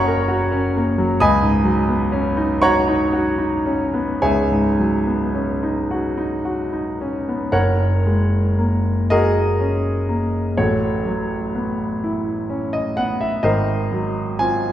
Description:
classical, impressionist solo piano; 35-45 BPM (dotted quarters); 6/8; rubato; F# mixolydian; A4 = 440 Hz
clear concert grand piano; solo; 0.0-14.7 s; F#1 to D#6; -17 LUFS; equal
wet scoring stage reverb, RT60 1.6 s; heard from further back in the room; -17 LUFS; side -12 dB against mid
0.0-7.5 A section; 7.5-14.7 B section
0.0 F#6; 1.2 C#9sus4; 7.5 F#add9; 10.6 A69; 13.4 G#13

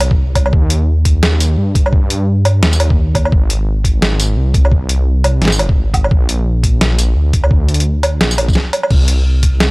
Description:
half-time drum and bass; 172 BPM; 4/4; swing 59% on 16ths, half-time; A4 = 441 Hz
dark detuned saw bass; bass; 0.0-9.7 s; Ab1 to G2; -13 LUFS; equal
boom bap sampler-style drum kit; drums; 0.0-9.7 s; crash cymbal, hi-hat, snare drum, tambourine, woodblock; -16 LUFS; equal
electronic kick drum; drums; 0.1-9.5 s; -13 LUFS; equal
digital ambience; dry, gritty hardware recording, transformer saturation; -11 LUFS; side -26 dB against mid
0.0-9.7 A section

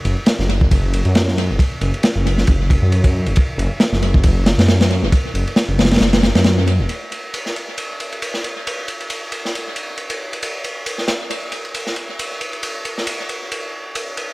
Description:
breakbeat, breaks; 136 BPM; 4/4; swing 56% on 16ths; A4 = 439 Hz
crunchy breakbeat drum kit; drums; 0.0-14.3 s; kick drum, ride cymbal, snare drum; -18 LUFS; equal; high-pass filter on kick, high-pass filter on cymbals, high-pass filter on snare, high-pass filter on room, tape echo
detuned saw bass; bass; 0.1-6.9 s; Eb1 to Gb2; -17 LUFS; equal; tube saturation
light reverb; echo-heavy mix, vinyl crackle; -16 LUFS; side -20 dB against mid
0.0-6.9 A section; 6.9-14.3 B section
kick drops out 6.0-6.9

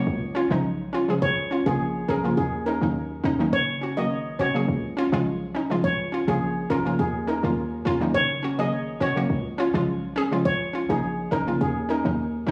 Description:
dancehall; 104 BPM; 4/4; straight; F# major; A4 = 440 Hz
hollow square pluck; accompaniment; 0.0-12.5 s; C#3 to G#4; -27 LUFS; equal; chorus
warm 808-style bass; bass; 0.0-12.5 s; F#1 to D#2; -32 LUFS; equal
steel pan; melody; 1.2-12.0 s; G#4 to D#5; -30 LUFS; equal; digital delay
light reverb; recorded on a phone in the room, studio reverb; -25 LUFS; mono
0.0-12.5 A section
0.1 C#; 1.2 A#m; 2.4 D#m7; 3.5 F#; 4.7 C#; 5.8 A#m; 7.0 D#m7; 8.1 F#; 9.3 C#; 10.5 A#m; 11.6 D#m7

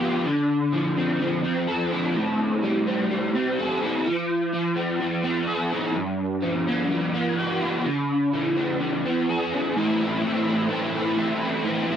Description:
rock; 126 BPM; 4/4; straight; A minor; A4 = 441 Hz
crunchy overdriven guitar; solo; 0.0-12.0 s; G2 to A4; -22 LUFS; equal; ensemble chorus
wet small room reverb, RT60 0.5 s; home recording on cassette; -22 LUFS; side -8 dB against mid
0.0-9.8 A section; 9.8-12.0 B section
0.3 Dm7; 2.2 Am7; 4.1 Fmaj7; 6.0 G7; 7.9 Dm7; 9.8 Am

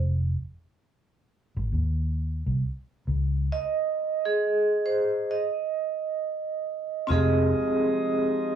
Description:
lo-fi hip hop; 67 BPM; 4/4; swing 64% on 16ths; F minor; A4 = 441 Hz
vintage muted fingered electric bass; bass; 0.0-7.5 s; F1 to Eb2; -24 LUFS; equal
vibraphone with soft mallets; accompaniment; 3.5-8.6 s; C4 to Eb5; -24 LUFS; right 2 dB; low-pass filter
pipe organ, sparkling flutes; sustained chords; 7.1-8.6 s; F3 to Eb4; -34 LUFS; right 1 dB
moderate studio reverb, RT60 0.6 s; worn, warbling old tape, cassette tape, warbly pitch drift, studio ambience; -24 LUFS; side -9 dB against mid
0.0-7.1 A section; 7.1-8.6 B section
vibraphone solo 0.0-7.1; filter sweep on vibraphone 0.0-7.1
0.0 Fm; 1.7 N.C.; 3.1 Dbsus2; 5.3 N.C.; 7.1 Fm9

